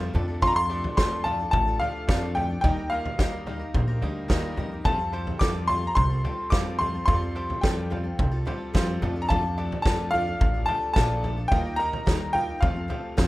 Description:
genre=indie folk with a building arrangement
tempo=108 BPM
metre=4/4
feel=straight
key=unclear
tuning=A4 = 440 Hz
part: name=bright upright piano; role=melody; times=0.0-13.3 s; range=F5 to D6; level=-27 LUFS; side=left 1 dB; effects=slapback echo
part: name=bright concert grand piano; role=accompaniment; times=0.0-13.3 s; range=F1 to Eb5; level=-37 LUFS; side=right 2 dB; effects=none
part: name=picked steel-string acoustic guitar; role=accompaniment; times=0.0-13.3 s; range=Eb3 to Bb4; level=-35 LUFS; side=left 4 dB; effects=none
part: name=open-back banjo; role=arpeggios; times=0.0-13.3 s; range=Eb4 to A4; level=-38 LUFS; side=right 5 dB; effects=plate reverb
part: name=upright bass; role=bass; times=0.0-13.3 s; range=A1 to F2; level=-29 LUFS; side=equal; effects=none
part: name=loose indie drum kit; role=drums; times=0.1-13.3 s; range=kick drum, snare drum, toms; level=-27 LUFS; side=equal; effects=none
room=light reverb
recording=rough home demo mix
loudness=-23 LUFS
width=side -18 dB against mid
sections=0.0-13.3 A section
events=none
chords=0.1 Dm/F; 2.6 Eb; 4.9 Fadd9; 9.0 Dm/F; 11.5 Eb; 12.6 Fadd9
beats=| 0.42 0.97 1.53 2.08 | 2.64 3.19 3.75 4.30 | 4.86 5.41 5.97 6.52 | 7.08 7.63 8.19 8.74 | 9.29 9.85 10.40 10.96 | 11.51 12.07 12.62 13.18

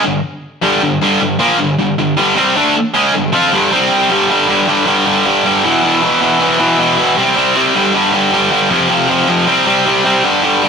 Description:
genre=rock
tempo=156 BPM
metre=4/4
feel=straight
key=G mixolydian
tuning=A4 = 440 Hz
part: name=high-gain distorted guitar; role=solo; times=0.0-10.7 s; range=E2 to F4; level=-10 LUFS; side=equal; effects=distortion
room=moderate stone room reverb, RT60 1.2 s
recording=rough rehearsal-room recording, warm saturation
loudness=-10 LUFS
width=side -6 dB against mid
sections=0.0-4.1 A section; 4.1-10.7 B section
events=none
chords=0.0 G5; 3.7 C5; 4.1 G5; 5.6 E5; 7.2 C5; 7.7 G5; 8.7 F5; 9.5 C5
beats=0.23 0.62 | 1.00 1.39 1.78 2.17 | 2.56 2.94 3.33 3.72 | 4.10 4.49 4.87 5.25 | 5.64 6.02 6.40 6.79 | 7.17 7.55 7.94 8.32 | 8.70 9.09 9.47 9.85 | 10.24 10.62

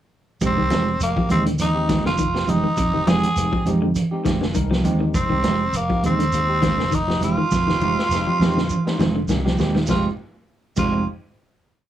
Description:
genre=afrobeat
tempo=101 BPM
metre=4/4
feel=swing 54% on 16ths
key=F dorian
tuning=A4 = 440 Hz
part: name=semi-hollow electric guitar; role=stabs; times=0.4-11.0 s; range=Ab3 to G4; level=-26 LUFS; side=right 6 dB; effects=none
part: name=fingered electric bass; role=bass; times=0.4-11.1 s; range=F1 to F2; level=-23 LUFS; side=right 1 dB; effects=none
part: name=vintage drum kit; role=drums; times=0.4-10.9 s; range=crash cymbal, hi-hat, kick drum, snare drum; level=-27 LUFS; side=equal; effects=none
part: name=congas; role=percussion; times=0.4-10.9 s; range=none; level=-26 LUFS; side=right 4 dB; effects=none
part: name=shekere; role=percussion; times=0.4-10.9 s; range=none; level=-30 LUFS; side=right 4 dB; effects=none
part: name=breathy tenor saxophone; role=melody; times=0.5-11.1 s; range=Bb3 to Ab4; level=-23 LUFS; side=equal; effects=none
part: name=clean electric guitar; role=arpeggios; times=0.6-11.0 s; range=D3 to F3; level=-25 LUFS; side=left 4 dB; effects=none
part: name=overdriven tine electric piano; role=accompaniment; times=1.3-11.0 s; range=Ab3 to Bb4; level=-31 LUFS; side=left 9 dB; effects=fast tremolo
room=light reverb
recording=none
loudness=-18 LUFS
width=side -11 dB against mid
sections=0.4-9.9 groove; 9.9-11.9 final chord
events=drum fill 7.5-9.9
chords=0.4 Fm9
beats=| 0.41 1.00 1.59 2.19 | 2.78 3.37 3.96 4.55 | 5.14 5.74 6.33 6.92 | 7.52 8.11 8.70 9.30 | 9.89 10.48

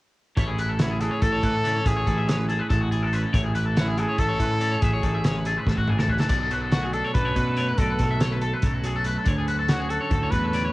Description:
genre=math rock and midwest emo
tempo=283 BPM (eighths)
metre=7/8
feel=straight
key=A major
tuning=A4 = 440 Hz
part: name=twelve-string electric guitar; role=accompaniment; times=0.4-10.7 s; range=F#2 to A4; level=-29 LUFS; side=right 2 dB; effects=wide subtle chorus, cassette tape
part: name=electric guitar through a small old amp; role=arpeggios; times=0.4-10.7 s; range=F#4 to E5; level=-29 LUFS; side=left 3 dB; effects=cassette tape, analog delay
part: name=overdriven picked electric bass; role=bass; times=0.4-10.7 s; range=A1 to B2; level=-27 LUFS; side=equal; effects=none
part: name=loose indie drum kit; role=drums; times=0.4-10.6 s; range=crash cymbal, hi-hat, kick drum, snare drum, toms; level=-26 LUFS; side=equal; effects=cassette tape
part: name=clear trumpet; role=melody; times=0.8-10.7 s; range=E4 to B4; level=-29 LUFS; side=equal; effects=cassette tape
room=light reverb, small room ambience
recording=home recording on cassette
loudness=-21 LUFS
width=side -19 dB against mid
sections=0.4-10.7 A section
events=drum fill 5.7-6.3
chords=0.4 Amaj7; 6.3 Bm7; 9.3 Dmaj7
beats=| 0.37 0.59 0.80 1.01 1.22 1.43 1.65 | 1.86 2.07 2.28 2.49 2.71 2.92 3.13 | 3.34 3.55 3.76 3.98 4.19 4.40 4.61 | 4.82 5.03 5.25 5.46 5.67 5.88 6.09 | 6.30 6.51 6.73 6.94 7.15 7.36 7.57 | 7.79 8.00 8.21 8.42 8.63 8.84 9.06 | 9.27 9.48 9.69 9.90 10.12 10.33 10.54

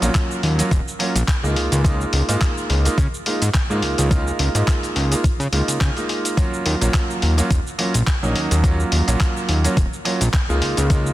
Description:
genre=nu-disco, nu disco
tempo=106 BPM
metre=4/4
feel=swing 55% on 16ths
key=Eb minor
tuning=A4 = 440 Hz
part: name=clear concert grand piano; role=accompaniment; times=0.0-11.1 s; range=Gb3 to F4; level=-23 LUFS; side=right 2 dB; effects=dub echo
part: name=fat analog bass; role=bass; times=0.0-11.1 s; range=Eb1 to Db3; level=-19 LUFS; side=equal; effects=none
part: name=dusty soul sampler-style drum kit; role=drums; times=0.0-11.1 s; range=handclaps, hi-hat, shaker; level=-25 LUFS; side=left 1 dB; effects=studio reverb
part: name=electronic kick drum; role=drums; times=0.1-11.0 s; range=none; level=-18 LUFS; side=equal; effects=studio reverb
room=light reverb, digital ambience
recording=dense, heavily limited modern master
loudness=-17 LUFS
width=side -15 dB against mid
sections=0.0-11.1 A section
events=none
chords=0.0 Ebm9; 1.6 Db6; 6.4 Ebm9; 10.6 Db6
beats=0.15 0.71 1.28 | 1.85 2.41 2.98 3.54 | 4.11 4.68 5.24 5.81 | 6.38 6.94 7.51 8.07 | 8.64 9.21 9.77 10.34 | 10.90

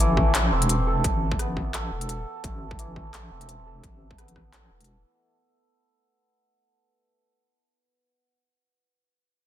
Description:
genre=half-time drum and bass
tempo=172 BPM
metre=4/4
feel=swing 56% on 16ths, half-time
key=A minor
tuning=A4 = 441 Hz
part: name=santur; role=arpeggios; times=0.0-8.3 s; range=E3 to A4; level=-30 LUFS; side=right 1 dB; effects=low-pass filter, tape echo
part: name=deep soft wobble bass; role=bass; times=0.0-5.0 s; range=E1 to A1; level=-27 LUFS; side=equal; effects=chorus
part: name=industrial drum kit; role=drums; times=0.0-4.9 s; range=handclaps, hi-hat, rim click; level=-29 LUFS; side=left 1 dB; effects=overdrive
part: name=electronic kick drum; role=drums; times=0.2-4.4 s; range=none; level=-27 LUFS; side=equal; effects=distortion, overdrive
room=light reverb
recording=dense, heavily limited modern master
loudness=-22 LUFS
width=side -12 dB against mid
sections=0.0-5.2 A section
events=fade-out 0.0-5.2; filter sweep on santur 0.0-5.2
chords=0.0 Amadd9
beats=0.00 0.35 0.69 | 1.04 1.39 1.74 2.09 | 2.44 2.79 3.14 3.49 | 3.83 4.18 4.53 4.88

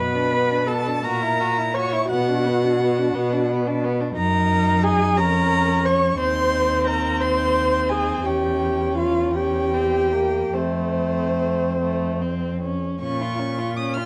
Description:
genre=classical, slow romantic movement for string quartet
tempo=47-60 BPM (dotted quarters)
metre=6/8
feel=rubato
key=Bb minor from 4.2 s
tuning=A4 = 436 Hz
part: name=clear violin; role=melody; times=0.0-14.1 s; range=C5 to F6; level=-29 LUFS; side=equal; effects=none
part: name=clear violin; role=second line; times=0.0-14.1 s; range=A3 to F#4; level=-29 LUFS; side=equal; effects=none
part: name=warm viola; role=accompaniment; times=0.0-12.6 s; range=C4 to C#5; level=-25 LUFS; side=equal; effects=none
part: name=rich cello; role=bass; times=0.0-14.0 s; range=Eb2 to B2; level=-26 LUFS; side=equal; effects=none
room=light reverb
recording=dark, warm production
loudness=-21 LUFS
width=mono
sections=0.0-13.0 A section; 13.0-14.1 B section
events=none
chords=0.0 Bm; 1.0 F#7/A#; 2.1 Bm; 4.2 Gb; 6.2 Abadd9/Eb; 8.3 Em6; 10.5 F; 13.0 Bbm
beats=1.04 | 2.11 3.16 | 4.17 5.17 | 6.19 7.21 | 8.26 9.35 | 10.55 11.81 | 13.02

